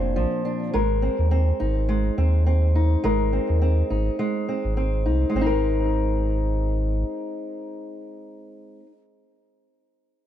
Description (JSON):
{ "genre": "folktronica", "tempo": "104 BPM", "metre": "4/4", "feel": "swing 56% on 16ths", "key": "Ab lydian", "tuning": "A4 = 444 Hz", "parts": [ { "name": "fingerpicked old ladder-braced acoustic guitar", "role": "arpeggios", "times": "0.0-9.0 s", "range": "Bb2 to Bb4", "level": "-25 LUFS", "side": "equal", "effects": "tape echo" }, { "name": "warm sub bass", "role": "bass", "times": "0.0-7.0 s", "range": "F1 to Eb2", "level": "-21 LUFS", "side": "equal", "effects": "none" } ], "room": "little or no reverb", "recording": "dry, close 1970s-style studio recording", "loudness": "-20 LUFS", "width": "side -11 dB against mid", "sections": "0.0-5.3 A section; 5.3-7.7 B section", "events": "none", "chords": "0.0 Bbadd9; 0.7 Abadd9" }